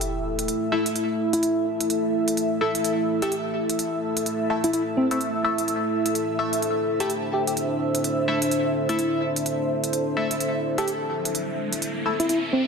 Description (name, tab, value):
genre	bass house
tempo	127 BPM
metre	4/4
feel	swing 60% on 16ths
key	A minor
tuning	A4 = 440 Hz
part	deep dark ambient pad	sustained chords	0.1-12.7 s	A3 to E5	-27 LUFS	equal	chorus, built-in reverb
part	electronic hi-hat	drums	0.0-12.4 s	none	-30 LUFS	right 2 dB	overdrive
part	sub drop and riser	sound effects	0.0-0.5, 10.7-12.7 s	none	-33 LUFS	equal	none
part	airy breathy pad	texture	0.0-12.7 s	E4 to E5	-28 LUFS	right 1 dB	chorus, phaser
part	band-passed chord stab	stabs	0.7-12.2 s	A3 to E5	-29 LUFS	left 2 dB	phaser, wide subtle chorus, cassette tape, digital delay
part	soft struck synth lead	melody	1.3-12.6 s	C4 to G4	-26 LUFS	equal	chorus, digital delay
room	wet lush hall reverb, RT60 1.7 s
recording	dense, heavily limited modern master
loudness	-22 LUFS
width	side -5 dB against mid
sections	0.0-12.7 A section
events	impact 0.0-0.5; riser 10.7-12.7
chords	0.0 A5